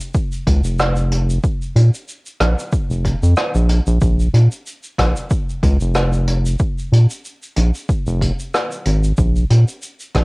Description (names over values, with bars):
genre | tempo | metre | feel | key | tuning
sunset chillout | 93 BPM | 4/4 | swing 55% on 16ths | unclear | A4 = 442 Hz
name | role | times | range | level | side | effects
jazz brush drum kit | drums | 0.0-10.2 s | hi-hat, rim click, shaker | -23 LUFS | equal | cassette tape
electronic kick drum | drums | 0.1-10.2 s | none | -19 LUFS | equal | overdrive, cassette tape
round analog bass | bass | 0.5-10.2 s | F1 to Bb2 | -14 LUFS | equal | none
room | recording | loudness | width
little or no reverb | home recording on cassette | -15 LUFS | side -27 dB against mid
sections
0.0-10.2 A section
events
none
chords
none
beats
0.15 0.79 | 1.44 2.08 2.73 3.37 | 4.02 4.66 5.31 5.95 | 6.60 7.24 7.89 8.54 | 9.18 9.82